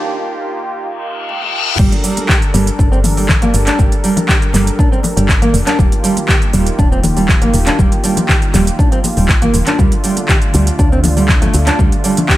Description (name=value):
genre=afro house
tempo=120 BPM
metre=4/4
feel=straight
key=G minor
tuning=A4 = 437 Hz
part: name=warm analog pad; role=sustained chords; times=0.0-12.4 s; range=D3 to Bb4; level=-22 LUFS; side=right 1 dB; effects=lush chorus, sidechain pumping
part: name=reverse cymbal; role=sound effects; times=1.0-1.8 s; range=none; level=-20 LUFS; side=left 6 dB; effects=none
part: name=afro-pop drum kit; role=drums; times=1.3-12.4 s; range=crash cymbal, handclaps, hi-hat, shaker, toms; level=-18 LUFS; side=equal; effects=studio reverb
part: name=nylon-string guitar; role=arpeggios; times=1.8-12.4 s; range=G3 to G4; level=-17 LUFS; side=right 2 dB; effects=sidechain pumping, digital delay
part: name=woody FM bass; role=bass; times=1.8-11.9 s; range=Eb1 to D2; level=-16 LUFS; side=equal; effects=sidechain pumping
part: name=electronic kick drum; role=drums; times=1.8-12.4 s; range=none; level=-13 LUFS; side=equal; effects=high-pass filter on kick, studio reverb
part: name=congas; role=percussion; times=1.9-12.3 s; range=none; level=-22 LUFS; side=left 3 dB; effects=none
room=little or no reverb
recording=high-pass filter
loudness=-10 LUFS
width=side -15 dB against mid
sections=0.0-1.8 A section; 1.8-12.4 B section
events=break 0.0-1.8; build-up 0.0-1.8; filter sweep on nylon-string guitar 0.0-1.8; filter sweep 0.0-1.8; reverse cymbal 1.0-1.8; drum fill 1.3-1.8; drop 1.8-12.4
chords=0.0 Eb; 1.8 Gm; 5.8 Eb; 9.8 Dm